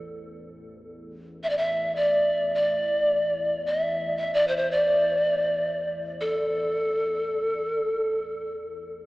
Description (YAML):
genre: world meditative, free-time meditation music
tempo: free time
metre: none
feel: none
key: unclear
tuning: A4 = 441 Hz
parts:
  - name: deep rumbling drone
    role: drone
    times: 0.0-9.1 s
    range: A1 to E2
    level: -44 LUFS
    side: equal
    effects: built-in reverb
  - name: breathy mellow pan flute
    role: melody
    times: 1.4-8.5 s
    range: A4 to E5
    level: -23 LUFS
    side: equal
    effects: none
room: wet cathedral reverb, RT60 6.0 s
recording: in a vast, echoing space, small speaker sound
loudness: -23 LUFS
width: side -20 dB against mid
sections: 0.0-9.1 A section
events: none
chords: none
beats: free time